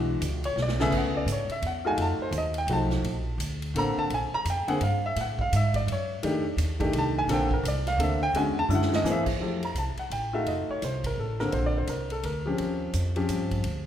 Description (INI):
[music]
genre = jazz piano trio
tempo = 170 BPM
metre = 3/4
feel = swing 63% on 8ths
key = F major from 9.4 s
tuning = A4 = 445 Hz
[part]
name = warm baby grand piano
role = melody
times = 0.0-13.6 s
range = Db3 to Bb5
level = -27 LUFS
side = left 1 dB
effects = none
[part]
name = upright bass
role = bass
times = 0.0-13.9 s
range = F1 to A2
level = -30 LUFS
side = equal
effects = none
[part]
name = swinging big-band drum kit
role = drums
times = 0.2-13.7 s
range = crash cymbal, hi-hat, kick drum, ride cymbal, snare drum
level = -36 LUFS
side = right 2 dB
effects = none
[sound]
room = moderate scoring stage reverb, RT60 1.9 s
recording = recorded in a church or concert hall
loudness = -25 LUFS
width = side -10 dB against mid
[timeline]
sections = 0.9-9.4 A section; 9.4-13.9 B section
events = grand piano solo 0.0-9.4; drum fill 0.6-0.9, 8.7-9.1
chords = 0.0 E9; 0.9 Amaj9; 2.0 F7b9; 3.0 Bbmaj9; 4.1 Bb7(no3); 5.2 Amaj7; 6.2 F13; 7.3 Bbmaj9; 8.3 E13; 9.1 Caug7; 9.4 Fmaj9; 10.5 F7b9; 11.5 Bbmaj9; 12.6 Eb13